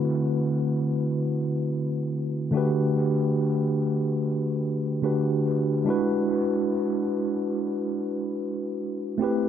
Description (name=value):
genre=R&B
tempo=free time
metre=none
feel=none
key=unclear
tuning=A4 = 440 Hz
part: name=mellow tine electric piano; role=solo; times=0.0-9.5 s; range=D3 to B4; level=-23 LUFS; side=equal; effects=medium stereo tremolo, dub echo
room=wet spring reverb, RT60 1.3 s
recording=echo-heavy mix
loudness=-23 LUFS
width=side -9 dB against mid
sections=0.0-9.5 A section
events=none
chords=0.0 D13; 2.5 Gmaj9/D; 5.9 E9